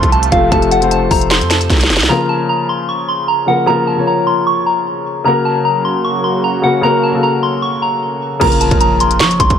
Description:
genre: hip hop, trap.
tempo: 152 BPM.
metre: 4/4.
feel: half-time.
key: Bb harmonic minor.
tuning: A4 = 440 Hz.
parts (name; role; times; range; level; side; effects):
soft synth bell; melody; 0.0-9.6 s; F5 to Db6; -15 LUFS; right 1 dB; chorus, phaser, low-pass filter, ping-pong delay.
dark grand piano; accompaniment; 0.0-9.6 s; C3 to Db5; -16 LUFS; left 4 dB; low-pass filter.
sweeping resonant pad; sustained chords; 0.0-2.1, 5.3-8.4 s; C3 to Gb4; -22 LUFS; right 3 dB; chorus.
hard-hitting 808-style bass; bass; 0.0-2.1, 8.4-9.6 s; F1 to F3; -17 LUFS; right 1 dB; none.
trap drum kit; drums; 0.0-2.1, 8.4-9.6 s; crash cymbal, finger snaps, hi-hat, kick drum, snare drum; -14 LUFS; right 1 dB; none.
impact; sound effects; 8.4-9.6 s; none; -24 LUFS; right 4 dB; none.
room: light reverb.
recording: none.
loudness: -11 LUFS.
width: side -8 dB against mid.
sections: 0.0-2.1 A section; 2.1-8.4 B section; 8.4-9.6 A section.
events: drum fill 1.7-2.1; impact 8.4-9.6.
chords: 0.0 F; 2.1 Bbm; 5.3 Gb; 8.4 Bbm.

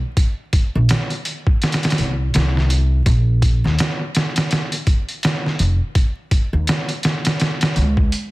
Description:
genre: trip hop.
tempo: 83 BPM.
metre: 4/4.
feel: swing 59% on 16ths.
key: unclear.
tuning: A4 = 440 Hz.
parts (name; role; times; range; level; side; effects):
trip hop sampler-style drum kit; drums; 0.2-8.3 s; hi-hat, kick drum, snare drum; -18 LUFS; equal; studio reverb.
upright bass; bass; 0.8-8.1 s; F1 to Eb2; -17 LUFS; equal; none.
room: digital ambience.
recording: dense, heavily limited modern master, vinyl crackle.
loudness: -16 LUFS.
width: side -20 dB against mid.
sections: 0.0-8.3 A section.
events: none.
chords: none.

